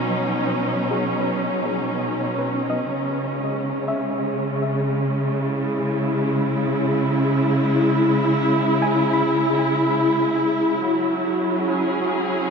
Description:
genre	ambient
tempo	60 BPM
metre	4/4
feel	straight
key	unclear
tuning	A4 = 439 Hz
part	dark symphonic string section	sustained chords	0.0-12.5 s	B2 to G#4	-19 LUFS	equal	low-pass filter
part	soft round pluck	arpeggios	0.0-12.5 s	G#4 to B5	-32 LUFS	left 2 dB	chorus, ping-pong delay
room	wet huge ambient reverb, RT60 9.3 s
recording	dreamy mix soaked in reverb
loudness	-19 LUFS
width	side -5 dB against mid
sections	0.0-10.8 A section; 10.8-12.5 B section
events	fade-in on synth pluck 0.0-10.8; filter sweep on string section 10.8-12.5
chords	0.0 B69; 2.9 C#m9; 10.8 F#7(no3)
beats	0.92 1.91 | 2.89 3.88 4.86 5.84 | 6.82 7.82 8.81 9.82 | 10.84 11.84

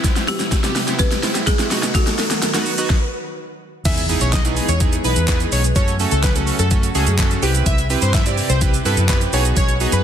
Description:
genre	dance-pop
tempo	126 BPM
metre	4/4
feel	straight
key	E major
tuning	A4 = 440 Hz
part	chorused retro synth keys	accompaniment	0.0-10.0 s	A3 to D5	-24 LUFS	right 5 dB	sidechain pumping, low-pass filter
part	soft string machine	sustained chords	0.0-10.0 s	C3 to B4	-28 LUFS	left 1 dB	ensemble chorus, sidechain pumping, low-pass filter
part	pop drum kit	drums	0.0-10.0 s	crash cymbal, handclaps, hi-hat, kick drum, shaker, snare drum	-19 LUFS	equal	overdrive
part	riser and impact	sound effects	0.0-5.8 s	none	-28 LUFS	left 1 dB	none
part	folk marimba with hard mallets	melody	0.3-3.3 s	F#4 to B4	-26 LUFS	equal	low-pass filter, digital delay
part	plucky unison lead	melody	3.9-10.0 s	G4 to E5	-24 LUFS	left 1 dB	sidechain pumping, digital delay
part	vintage muted fingered electric bass	bass	3.9-10.0 s	B1 to G2	-19 LUFS	equal	sidechain pumping
room	light reverb, digital ambience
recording	dense, heavily limited modern master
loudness	-15 LUFS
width	side -9 dB against mid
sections	0.0-3.9 A section; 3.9-10.0 B section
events	build-up 0.0-3.9; drum fill 0.0-2.9; riser 0.0-3.9; stop 2.9-3.9; drop 3.9-10.0; impact 3.9-5.8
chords	0.0 Cmaj7; 1.7 B; 3.9 Emaj7; 5.8 F#m; 7.4 Cmaj7; 9.3 B6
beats	| 0.04 0.52 1.00 1.47 | 1.95 2.42 2.90 3.38 | 3.85 4.33 4.81 5.28 | 5.76 6.23 6.71 7.19 | 7.66 8.14 8.62 9.09 | 9.57

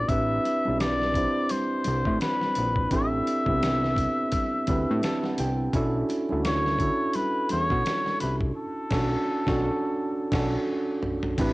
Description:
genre	R&B, neo-soul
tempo	85 BPM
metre	4/4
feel	swing 59% on 16ths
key	unclear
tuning	A4 = 440 Hz
part	trumpet with cup mute	melody	0.0-10.6 s	A4 to E5	-28 LUFS	left 1 dB	none
part	tine electric piano	accompaniment	0.0-11.5 s	B3 to A5	-27 LUFS	right 2 dB	overdrive, cassette tape
part	fat analog bass	bass	0.0-11.5 s	A1 to B2	-29 LUFS	equal	tube saturation
part	dusty soul sampler-style drum kit	drums	0.1-11.5 s	crash cymbal, hi-hat, kick drum, snare drum, toms	-31 LUFS	equal	cassette tape
part	congas	percussion	0.1-11.5 s	none	-40 LUFS	left 3 dB	none
room	light reverb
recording	home recording on cassette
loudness	-23 LUFS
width	side -20 dB against mid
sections	0.0-11.4 A section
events	tine electric piano fill 4.7-5.7; band accent 8.6-11.4; drum fill 10.0-11.4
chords	0.1 Am9; 5.7 Bm9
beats	| 0.09 0.79 1.50 2.20 | 2.91 3.62 4.32 5.03 | 5.73 6.44 7.14 7.85 | 8.56 9.26 9.97 10.68 | 11.38

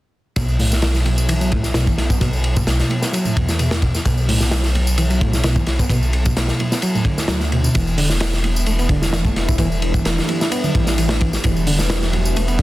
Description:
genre	breakbeat, breaks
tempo	130 BPM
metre	4/4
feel	straight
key	E minor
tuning	A4 = 440 Hz
part	barky reed electric piano	riff	0.4-12.6 s	A2 to E4	-22 LUFS	equal	overdrive, tube saturation
part	phased detuned saw bass	bass	0.4-12.6 s	E1 to E2	-20 LUFS	equal	phaser
part	crunchy breakbeat drum kit	drums	0.4-12.6 s	hi-hat, kick drum, ride cymbal, snare drum	-20 LUFS	equal	none
part	tambourine	drums	0.4-12.6 s	none	-30 LUFS	left 1 dB	none
part	congas	percussion	0.4-12.6 s	none	-31 LUFS	right 5 dB	none
part	dark analog pad	sustained chords	8.5-12.6 s	G3 to B4	-27 LUFS	equal	chorus, vintage 12-bit sampler grit, sidechain pumping
room	moderate studio reverb, RT60 0.6 s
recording	dense, heavily limited modern master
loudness	-16 LUFS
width	side -17 dB against mid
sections	0.4-12.6 A section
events	none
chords	0.4 N.C.; 7.7 Em7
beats	| 0.36 0.82 1.29 1.75 | 2.21 2.67 3.13 3.59 | 4.06 4.52 4.98 5.44 | 5.90 6.36 6.83 7.29 | 7.75 8.21 8.67 9.13 | 9.59 10.06 10.52 10.98 | 11.44 11.90 12.36

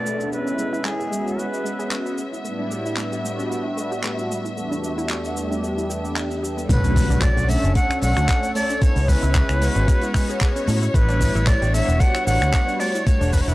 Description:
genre	nu-disco, nu disco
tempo	113 BPM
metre	4/4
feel	swing 54% on 16ths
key	unclear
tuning	A4 = 436 Hz
part	bright reedy jazz flute	melody	0.0-2.2, 6.7-13.5 s	G#4 to F#5	-25 LUFS	equal	vintage 12-bit sampler grit
part	warm analog pad	accompaniment	0.0-13.5 s	E2 to A4	-26 LUFS	equal	chorus, cassette tape, sidechain pumping
part	rich studio string section	sustained chords	0.0-13.5 s	C#5 to E5	-32 LUFS	left 2 dB	sidechain pumping, low-pass filter
part	downlifter and impact	sound effects	0.0-2.4, 6.7-8.8 s	none	-28 LUFS	equal	none
part	wide unison pluck	arpeggios	0.1-13.5 s	G#3 to G#4	-32 LUFS	right 1 dB	sidechain pumping, analog delay
part	damped 70s drum kit	drums	0.1-13.5 s	cabasa, finger snaps, handclaps, hi-hat	-30 LUFS	equal	small room ambience
part	fingered electric bass with an envelope filter	bass	6.7-13.5 s	E1 to A2	-20 LUFS	equal	none
part	electronic kick drum	drums	6.7-13.4 s	none	-19 LUFS	equal	small room ambience
part	tambourine	percussion	6.7-13.5 s	none	-41 LUFS	equal	none
room	small room ambience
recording	dry, gritty hardware recording, transformer saturation, cassette tape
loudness	-19 LUFS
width	side -18 dB against mid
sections	0.0-6.7 A section; 6.7-13.5 B section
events	drop 6.7-13.5; impact 6.7-8.8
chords	0.3 C#m7; 2.2 A9sus4; 4.3 Em11; 6.7 Bm9; 8.8 C#m7; 10.7 Em11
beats	| 0.32 0.85 1.39 1.92 | 2.45 2.98 3.51 4.04 | 4.57 5.10 5.63 6.17 | 6.70 7.23 7.76 8.29 | 8.82 9.35 9.88 10.41 | 10.94 11.47 12.01 12.54 | 13.07

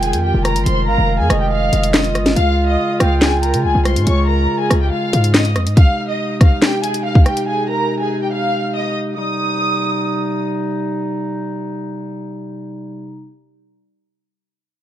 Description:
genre	hip hop, drill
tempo	141 BPM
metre	4/4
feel	half-time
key	C phrygian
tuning	A4 = 440 Hz
part	warm studio violin section	melody	0.0-10.4 s	G4 to F6	-20 LUFS	equal	low-pass filter, tape echo
part	breathy flute-like synth lead	second line	0.0-3.6 s	Eb5 to G5	-23 LUFS	right 5 dB	chorus, tape echo
part	dark woodwind section	sustained chords	0.0-13.3 s	C3 to F4	-22 LUFS	equal	none
part	hard-hitting 808-style bass	bass	0.0-5.8 s	F1 to Db3	-16 LUFS	equal	none
part	drill drum kit	drums	0.0-7.5 s	handclaps, hi-hat, kick drum, rim click, snare drum	-14 LUFS	equal	none
room	little or no reverb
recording	dark, warm production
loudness	-14 LUFS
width	side -12 dB against mid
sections	0.0-9.2 A section; 9.2-12.6 B section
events	none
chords	0.0 Fm7; 2.4 Db; 5.8 Ab; 9.2 Cm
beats	0.24 | 0.66 1.09 1.51 1.94 | 2.37 2.79 3.22 3.64 | 4.07 4.49 4.92 5.34 | 5.77 6.20 6.62 7.05 | 7.47 7.90 8.32 8.75 | 9.17 9.60 10.03 10.45 | 10.88 11.30 11.73 12.15

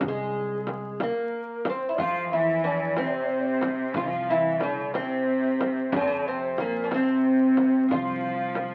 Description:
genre	Persian modal ensemble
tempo	61 BPM (dotted quarters)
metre	6/8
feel	straight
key	unclear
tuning	A4 = 440 Hz
part	breathy bright low ney	second line	0.0-8.6 s	Ab4 to F5	-34 LUFS	equal	none
part	upright bass	bass	0.0-8.7 s	C2 to F2	-41 LUFS	equal	none
part	frame drum	percussion	0.0-8.7 s	none	-34 LUFS	equal	none
part	tombak	percussion	0.0-8.7 s	none	-41 LUFS	equal	none
part	oud	melody	0.1-8.7 s	Ab3 to F4	-28 LUFS	equal	none
part	clear chamber cello section	second line	2.0-8.7 s	Bb2 to F3	-33 LUFS	equal	none
room	moderate studio reverb, RT60 0.9 s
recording	very old 78 rpm record, vinyl crackle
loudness	-26 LUFS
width	mono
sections	0.0-8.7 A section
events	none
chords	none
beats	| 0.02 1.00 | 1.99 2.97 | 3.95 4.94 | 5.92 6.91 | 7.89

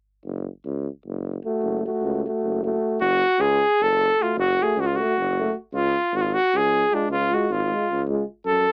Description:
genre	balkan folk, Balkan brass band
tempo	308 BPM (eighths)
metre	7/8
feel	straight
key	F# harmonic minor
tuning	A4 = 441 Hz
part	mellow tuba	bass	0.3-8.7 s	F#1 to F#2	-30 LUFS	equal	tube saturation
part	warm French horn	accompaniment	1.4-8.2 s	E#4 to F#4	-33 LUFS	equal	cassette tape
part	warm euphonium	accompaniment	1.5-8.2 s	G#3 to A3	-28 LUFS	equal	cassette tape
part	warm cornet	melody	3.0-8.7 s	D4 to A4	-22 LUFS	equal	cassette tape
room	moderate booth ambience, RT60 0.2 s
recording	home recording on cassette, AM radio sound, faint mains hum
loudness	-23 LUFS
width	mono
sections	0.3-3.0 A section; 3.0-8.7 B section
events	none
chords	0.3 F#m; 5.7 C#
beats	| 0.26 0.46 0.65 0.85 1.04 1.24 1.44 | 1.63 1.83 2.02 2.22 2.41 2.61 2.81 | 3.00 3.19 3.39 3.58 3.78 3.98 4.17 | 4.37 4.56 4.75 4.95 5.14 5.34 5.53 | 5.73 5.92 6.12 6.31 6.51 6.70 6.90 | 7.09 7.29 7.48 7.67 7.87 8.06 8.26 | 8.45 8.65

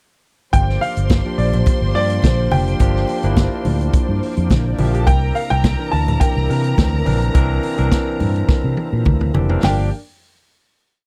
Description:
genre	disco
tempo	105 BPM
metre	4/4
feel	straight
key	G dorian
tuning	A4 = 441 Hz
part	dark baby grand piano	melody	0.5-9.9 s	D5 to A5	-26 LUFS	equal	none
part	dark studio string section	second line	0.5-9.9 s	Bb3 to C6	-30 LUFS	equal	none
part	overdriven tonewheel organ	sustained chords	0.5-9.9 s	Bb2 to G4	-32 LUFS	equal	chorus vibrato, slow rotary speaker
part	fingered electric bass with an envelope filter	bass	0.5-9.9 s	F1 to C3	-21 LUFS	equal	none
part	vintage drum kit	drums	0.5-9.8 s	hi-hat, kick drum, snare drum, toms	-20 LUFS	equal	none
part	congas	percussion	0.5-9.9 s	none	-27 LUFS	equal	none
part	barky tine electric piano	accompaniment	1.2-9.9 s	E3 to Bb4	-26 LUFS	equal	overdrive
room	little or no reverb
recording	dry, close 1970s-style studio recording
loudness	-17 LUFS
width	mono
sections	0.5-9.6 groove; 9.6-11.1 final chord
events	drum fill 8.5-9.6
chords	0.5 Gm7; 5.1 C9; 9.6 Gm7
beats	| 0.53 1.10 1.67 2.23 | 2.80 3.37 3.94 4.50 | 5.07 5.64 6.21 6.78 | 7.35 7.92 8.49 9.06 | 9.63

